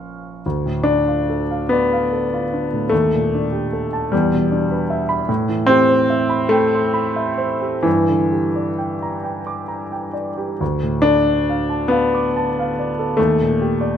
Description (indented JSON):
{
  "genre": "classical, impressionist solo piano",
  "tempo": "37-52 BPM (dotted quarters)",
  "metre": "6/8",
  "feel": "rubato",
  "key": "D dorian",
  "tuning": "A4 = 441 Hz",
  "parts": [
    { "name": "warm grand piano", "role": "solo", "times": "0.0-14.0 s", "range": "Bb1 to F6", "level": "-16 LUFS", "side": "equal", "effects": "none" }
  ],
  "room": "light reverb",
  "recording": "close, detailed microphones",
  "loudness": "-16 LUFS",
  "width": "side -9 dB against mid",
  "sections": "0.4-14.0 A section",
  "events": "none",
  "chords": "0.4 Dm6; 2.9 Ebmaj7#11; 4.1 Em7; 5.3 Am9; 7.9 Gm6; 10.6 Dm6; 13.2 Ebmaj7#11"
}